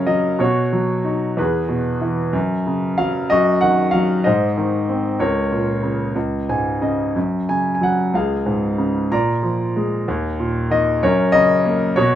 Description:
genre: classical, lyrical solo piano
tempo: 62 BPM (dotted quarters)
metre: 6/8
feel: rubato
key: F# major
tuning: A4 = 440 Hz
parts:
  - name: bright concert grand piano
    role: solo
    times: 0.0-12.2 s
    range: C#2 to A#5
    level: -16 LUFS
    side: equal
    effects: none
room: moderate small room reverb, RT60 0.5 s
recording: minimal, uncompressed stereo recording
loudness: -16 LUFS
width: side -11 dB against mid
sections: 0.0-12.2 A section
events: grand piano fill 6.2-7.2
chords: 0.4 B; 1.4 E; 2.4 F#5; 3.3 D#m/F#; 4.3 G#; 5.2 A#m/C#; 6.2 C#5; 7.2 F#5; 8.1 C#; 9.1 A#7; 10.1 D#5; 11.0 F#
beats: 0.41 | 1.39 2.35 | 3.31 4.26 | 5.20 6.16 | 7.16 8.14 | 9.11 10.07 | 11.03 11.97

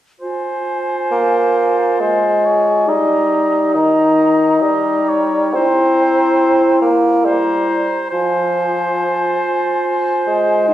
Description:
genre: classical, slow romantic movement for symphony orchestra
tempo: 69 BPM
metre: 3/4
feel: rubato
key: F minor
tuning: A4 = 444 Hz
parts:
  - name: mellow clarinet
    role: second line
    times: 0.2-10.7 s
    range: Eb4 to F4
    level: -19 LUFS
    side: left 1 dB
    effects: none
  - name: mellow hollow concert flute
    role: second line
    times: 0.2-10.7 s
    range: Gb5 to Bb5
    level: -22 LUFS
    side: left 2 dB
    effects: none
  - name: mellow oboe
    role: second line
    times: 0.2-10.7 s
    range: C5 to Eb5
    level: -22 LUFS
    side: right 2 dB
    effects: none
  - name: warm bassoon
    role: accompaniment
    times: 1.1-10.7 s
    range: Eb3 to C4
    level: -15 LUFS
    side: right 1 dB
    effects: none
room: wet recital hall reverb, RT60 1.4 s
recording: recorded in a church or concert hall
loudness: -13 LUFS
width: side -12 dB against mid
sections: 0.2-10.7 A section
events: none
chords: 0.2 Fm; 2.9 Eb; 5.6 C7; 8.1 Fm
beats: | 0.20 1.12 2.00 | 2.88 3.75 4.62 | 5.56 6.41 7.26 | 8.12 8.98 9.84 | 10.69

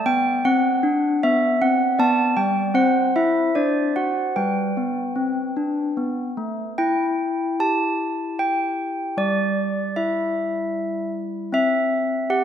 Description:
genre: classical, tune for handbells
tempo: 76 BPM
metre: 3/4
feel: straight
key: G major, E minor from 6.8 s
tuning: A4 = 442 Hz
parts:
  - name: handbells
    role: solo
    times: 0.0-12.4 s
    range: G3 to A5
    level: -19 LUFS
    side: equal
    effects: none
room: moderate concert hall reverb, RT60 2.1 s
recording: none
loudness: -19 LUFS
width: side -9 dB against mid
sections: 0.0-6.8 A section; 6.8-12.4 B section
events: none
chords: 0.0 D7; 2.0 G/B; 2.8 C; 3.6 D7; 4.4 G; 6.8 Em; 9.2 Em/G; 11.5 C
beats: 0.46 1.24 | 2.00 2.77 3.55 | 4.35 5.17 5.99 | 6.81 7.61 8.40 | 9.19 9.98 10.76 | 11.54 12.31

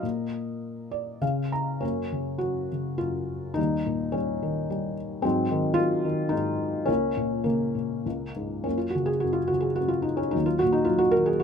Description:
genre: classical, lyrical solo piano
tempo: 97-115 BPM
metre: 3/4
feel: rubato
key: F# major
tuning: A4 = 437 Hz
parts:
  - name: felt-muted upright piano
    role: solo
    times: 0.0-11.4 s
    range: C#2 to Bb5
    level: -24 LUFS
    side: left 1 dB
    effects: none
room: light reverb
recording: none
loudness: -24 LUFS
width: side -7 dB against mid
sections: 0.0-1.8 A section; 1.8-11.4 B section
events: felt piano fill 0.6-1.8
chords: 0.0 Bbadd11; 1.2 N.C.; 1.8 F#; 3.6 D#7; 5.2 G#7; 6.9 A#m/C#; 8.1 C#5; 8.7 F#; 10.3 D#m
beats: | 0.04 0.62 1.22 | 1.83 2.42 3.01 | 3.58 4.14 4.70 | 5.24 5.78 6.32 | 6.88 7.46 8.05 | 8.66 9.24 9.80 | 10.35 10.88 11.43

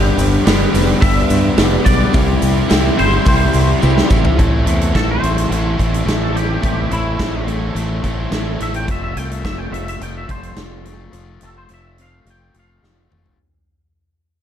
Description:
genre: indie rock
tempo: 107 BPM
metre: 4/4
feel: straight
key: unclear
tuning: A4 = 442 Hz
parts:
  - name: twangy electric guitar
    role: melody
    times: 0.0-13.4 s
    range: E4 to G5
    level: -24 LUFS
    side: left 1 dB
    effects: ensemble chorus, plate reverb, analog delay
  - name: biting overdriven guitar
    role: riff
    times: 0.0-8.9 s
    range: G2 to A4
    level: -22 LUFS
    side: right 6 dB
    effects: analog chorus
  - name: overdriven electric guitar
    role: riff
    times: 0.0-13.4 s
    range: G2 to F4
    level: -21 LUFS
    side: left 6 dB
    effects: none
  - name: growling fingered electric bass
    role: bass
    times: 0.0-13.4 s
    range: F1 to G2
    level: -19 LUFS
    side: equal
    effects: overdrive
  - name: big rock drum kit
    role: drums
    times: 0.2-13.4 s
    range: hi-hat, kick drum, snare drum, toms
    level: -18 LUFS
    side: right 1 dB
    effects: none
  - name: tube shaker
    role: percussion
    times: 0.2-4.3 s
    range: none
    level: -36 LUFS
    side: left 8 dB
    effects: none
room: light reverb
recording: dark, warm production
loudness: -13 LUFS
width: side -9 dB against mid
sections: 0.0-4.4 A section; 4.4-13.4 B section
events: drum fill 3.8-4.4, 12.8-13.4; fade-out 4.4-13.4; clean electric guitar solo 4.4-13.4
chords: 0.0 G; 2.1 Cadd9; 4.4 Am; 8.9 F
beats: 0.46 1.02 1.58 | 2.14 2.70 3.26 3.82 | 4.38 4.94 5.50 6.06 | 6.63 7.19 7.75 8.31 | 8.88 9.44 10.00 10.57 | 11.13 11.69 12.26 12.82

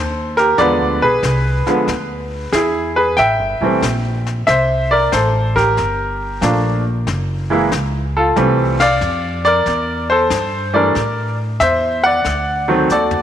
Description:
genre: jazz piano trio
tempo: 93 BPM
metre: 4/4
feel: swing 68% on 8ths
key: F major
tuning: A4 = 438 Hz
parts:
  - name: bright baby grand piano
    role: melody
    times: 0.0-13.2 s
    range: D3 to G5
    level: -15 LUFS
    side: equal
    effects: none
  - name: upright bass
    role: bass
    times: 0.0-13.2 s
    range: E1 to A2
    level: -21 LUFS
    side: equal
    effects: none
  - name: jazz brush drum kit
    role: drums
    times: 0.4-13.2 s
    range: brushed snare drum, hi-hat, kick drum, ride cymbal, snare drum, toms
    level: -27 LUFS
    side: left 6 dB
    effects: none
room: moderate echo chamber reverb, RT60 2.2 s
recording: 1960s-style stereo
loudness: -14 LUFS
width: side -10 dB against mid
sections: 0.0-13.2 A section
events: band accent 8.7-9.0; drum fill 12.9-13.2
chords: 0.0 Eb(#11); 0.6 E7b9; 3.2 Am7; 5.8 Gm7; 7.1 Gb7; 8.4 Fmaj7; 12.2 D(b9)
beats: | 0.58 1.23 1.88 2.53 | 3.18 3.83 4.47 5.12 | 5.77 6.42 7.07 7.71 | 8.36 9.01 9.66 10.30 | 10.95 11.60 12.25 12.89

